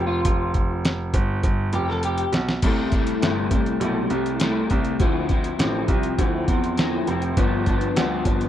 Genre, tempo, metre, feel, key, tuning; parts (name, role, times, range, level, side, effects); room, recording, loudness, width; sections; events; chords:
indie pop, bedroom pop; 101 BPM; 4/4; straight; A4 = 440 Hz
electric guitar through a small old amp; accompaniment; 0.0-8.5 s; G2 to A4; -24 LUFS; left 3 dB; ensemble chorus, warbly pitch drift
clear baby grand piano; bass; 0.0-8.5 s; F1 to E2; -25 LUFS; right 2 dB
dusty soul sampler-style drum kit; drums; 0.2-8.5 s; crash cymbal, hi-hat, kick drum, snare drum; -23 LUFS; equal
little or no reverb; dry, close 1970s-style studio recording; -20 LUFS; side -11 dB against mid
0.0-2.6 A section; 2.6-8.5 B section
clean electric guitar solo 0.0-2.6; drum fill 2.0-2.6
0.0 Fsus2; 1.4 Fadd9; 2.6 C6; 5.0 Dm9; 7.4 G7